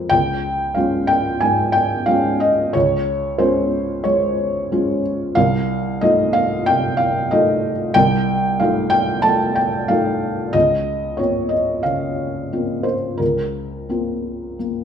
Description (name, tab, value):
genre	neoclassical minimalist piano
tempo	92 BPM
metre	4/4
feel	rubato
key	unclear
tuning	A4 = 440 Hz
part	felt-muted upright piano	solo	0.0-14.8 s	C2 to A5	-16 LUFS	equal	none
room	moderate large studio reverb, RT60 1.1 s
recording	band playing live in one room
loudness	-16 LUFS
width	side -8 dB against mid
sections	0.0-14.8 A section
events	none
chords	0.1 Db; 5.3 F7/C; 10.5 Bbmadd9/Db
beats	| 0.11 0.76 1.42 2.08 | 2.75 3.40 4.04 4.70 | 5.35 6.00 6.65 7.30 | 7.95 8.60 9.24 9.89 | 10.54 11.19 11.85 12.52 | 13.20 13.89 14.60